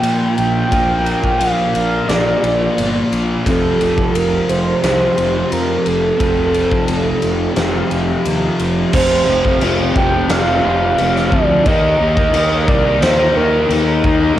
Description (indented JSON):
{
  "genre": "rock, shoegaze and dream pop",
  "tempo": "88 BPM",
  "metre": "4/4",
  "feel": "straight",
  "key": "unclear",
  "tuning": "A4 = 440 Hz",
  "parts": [
    { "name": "mellow horn-like synth lead", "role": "melody", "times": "0.0-14.0 s", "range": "A4 to G5", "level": "-17 LUFS", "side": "right 1 dB", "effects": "chorus, cassette tape, analog delay" },
    { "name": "fuzz guitar", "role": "riff", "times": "0.0-14.4 s", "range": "F2 to Eb4", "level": "-17 LUFS", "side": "equal", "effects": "distortion, lush chorus, cassette tape" },
    { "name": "fuzz fingered electric bass", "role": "bass", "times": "0.0-14.4 s", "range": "F1 to Bb2", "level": "-21 LUFS", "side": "equal", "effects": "overdrive" },
    { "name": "huge arena drum kit", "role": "drums", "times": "0.0-14.2 s", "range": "crash cymbal, kick drum, ride cymbal, snare drum", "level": "-20 LUFS", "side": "equal", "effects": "cassette tape" }
  ],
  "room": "light reverb",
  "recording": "home recording on cassette",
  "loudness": "-13 LUFS",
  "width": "side -12 dB against mid",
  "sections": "0.0-8.9 A section; 8.9-14.4 B section",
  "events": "none",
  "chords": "0.0 Bb6; 3.5 F; 8.9 F5; 11.7 Eb5"
}